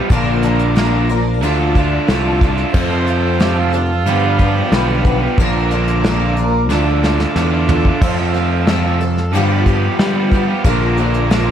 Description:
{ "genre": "folk rock and heartland rock", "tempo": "91 BPM", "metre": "4/4", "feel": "straight", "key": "unclear", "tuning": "A4 = 440 Hz", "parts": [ { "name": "picked twelve-string acoustic guitar", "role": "accompaniment", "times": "0.0-11.5 s", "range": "G2 to B4", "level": "-20 LUFS", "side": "left 2 dB", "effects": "ensemble chorus" }, { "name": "accordion", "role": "sustained chords", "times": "0.0-11.5 s", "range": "G4 to E6", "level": "-26 LUFS", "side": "right 2 dB", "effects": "none" }, { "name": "crunchy overdriven guitar", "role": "riff", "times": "0.0-11.5 s", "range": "F2 to G4", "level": "-19 LUFS", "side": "right 2 dB", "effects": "none" }, { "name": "modern bright picked electric bass", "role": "bass", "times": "0.1-11.5 s", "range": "Bb1 to G3", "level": "-17 LUFS", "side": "equal", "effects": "none" }, { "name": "soft brush drum kit", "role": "drums", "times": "0.1-11.5 s", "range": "crash cymbal, hi-hat, kick drum, snare drum, toms", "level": "-18 LUFS", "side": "equal", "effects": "none" }, { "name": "overdriven harmonica", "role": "second line", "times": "2.7-5.0 s", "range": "D4 to C5", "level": "-22 LUFS", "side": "right 7 dB", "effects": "none" } ], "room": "light reverb", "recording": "none", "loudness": "-13 LUFS", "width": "side -9 dB against mid", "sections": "0.0-11.5 A section", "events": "drum fill 6.7-8.0", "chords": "0.1 Bb; 1.4 Dm; 2.7 Fmaj7; 4.1 G7; 5.4 Bb; 6.7 Dm; 8.0 Fmaj7; 9.3 G7; 10.6 Bb", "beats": "| 0.10 0.77 1.42 2.08 | 2.74 3.40 4.06 4.72 | 5.38 6.04 6.70 7.36 | 8.01 8.67 9.33 9.99 | 10.64 11.30" }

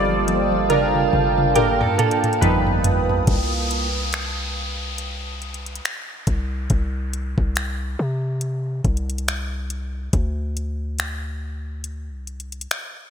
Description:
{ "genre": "contemporary R&B", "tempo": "70 BPM", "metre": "4/4", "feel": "swing 58% on 16ths", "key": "C dorian", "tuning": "A4 = 441 Hz", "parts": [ { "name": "warm analog keys", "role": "accompaniment", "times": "0.0-3.3 s", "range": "F3 to D5", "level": "-21 LUFS", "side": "equal", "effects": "chorus, phaser" }, { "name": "glassy FM pad", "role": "sustained chords", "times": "0.0-3.3 s", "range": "B4 to D#6", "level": "-25 LUFS", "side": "right 2 dB", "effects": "ensemble chorus, built-in reverb, sidechain pumping" }, { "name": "direct-recorded clean electric guitar", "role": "arpeggios", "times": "0.0-3.9 s", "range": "G2 to A4", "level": "-24 LUFS", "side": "right 6 dB", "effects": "vibrato effect, digital delay" }, { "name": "warm 808-style bass", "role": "bass", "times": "0.0-12.7 s", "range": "G1 to C3", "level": "-26 LUFS", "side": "left 1 dB", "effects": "none" }, { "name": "smooth R&B drum kit", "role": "drums", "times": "0.1-12.9 s", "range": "finger snaps, hi-hat, kick drum, toms", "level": "-23 LUFS", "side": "equal", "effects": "gated reverb" }, { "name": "downlifter", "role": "sound effects", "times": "3.3-10.1 s", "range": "none", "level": "-31 LUFS", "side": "left 1 dB", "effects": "none" } ], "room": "moderate lush hall reverb, RT60 3.0 s", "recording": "bright 1980s-style digital production", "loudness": "-20 LUFS", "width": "side -8 dB against mid", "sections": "0.0-3.3 A section; 3.3-13.1 B section", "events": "drum fill 0.0-3.3; synth keys solo 0.0-3.3", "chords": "0.0 Gm9; 2.4 G7alt; 3.3 N.C.; 10.1 Csus2", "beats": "0.70 1.56 2.42 | 3.27 4.13 4.99 5.84 | 6.70 7.56 8.42 9.27 | 10.13 10.99 11.84 12.70" }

